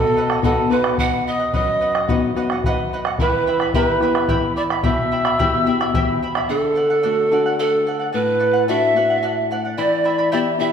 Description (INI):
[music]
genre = andean folk, Andean ensemble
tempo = 73 BPM (dotted quarters)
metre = 6/8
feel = straight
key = E minor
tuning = A4 = 440 Hz
[part]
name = mellow pan flute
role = melody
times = 0.0-10.7 s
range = A4 to F#5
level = -20 LUFS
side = right 4 dB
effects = none
[part]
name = mellow large quena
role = second line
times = 0.0-10.7 s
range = A4 to E6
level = -24 LUFS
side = left 4 dB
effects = none
[part]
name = charango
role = accompaniment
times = 0.0-10.7 s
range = E4 to B5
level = -25 LUFS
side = right 1 dB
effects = none
[part]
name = nylon-string guitar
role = accompaniment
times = 0.0-10.7 s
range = F#2 to G4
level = -23 LUFS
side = left 5 dB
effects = none
[part]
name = bombo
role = percussion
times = 0.3-6.5 s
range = none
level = -23 LUFS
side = equal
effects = none
[sound]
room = wet recital hall reverb, RT60 1.6 s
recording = none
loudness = -16 LUFS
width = side -7 dB against mid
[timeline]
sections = 0.0-6.5 A section; 6.5-10.7 A section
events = none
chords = 0.0 B; 3.2 Em; 6.5 D; 9.8 Em